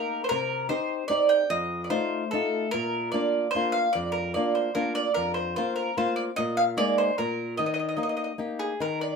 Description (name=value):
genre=italian folk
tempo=148 BPM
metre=3/4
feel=straight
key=Eb major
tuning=A4 = 440 Hz
part: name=bowl-back mandolin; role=melody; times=0.0-9.2 s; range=Ab4 to G5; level=-26 LUFS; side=right 2 dB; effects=none
part: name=flamenco guitar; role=accompaniment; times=0.0-9.2 s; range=F2 to G4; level=-29 LUFS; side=left 3 dB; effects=none
room=moderate studio reverb, RT60 0.6 s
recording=minimal, uncompressed stereo recording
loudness=-24 LUFS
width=side -5 dB against mid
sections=0.0-8.8 A section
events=none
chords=0.3 Cm; 1.5 F7; 2.7 Bb; 5.2 Fsus4; 6.4 Bb7sus4; 7.2 N.C.; 7.6 Eb